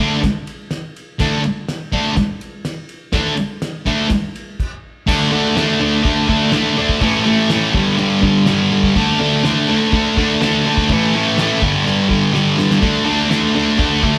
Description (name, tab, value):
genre	garage rock duo or trio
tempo	124 BPM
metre	4/4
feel	straight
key	unclear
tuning	A4 = 440 Hz
part	thick fuzz guitar	riff	0.0-14.2 s	G2 to D4	-16 LUFS	equal	distortion
part	cloth-damped thuddy drum kit	drums	0.2-14.1 s	crash cymbal, kick drum, ride cymbal, snare drum	-25 LUFS	equal	none
room	wet large studio reverb, RT60 1.2 s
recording	band playing live in one room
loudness	-16 LUFS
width	mono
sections	0.0-5.1 A section; 5.1-14.2 B section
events	stop 4.6-5.1; drum fill 12.3-12.8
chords	0.0 D5; 7.0 A5; 7.7 G5; 9.0 D5; 10.9 A5; 11.6 G5; 12.8 D5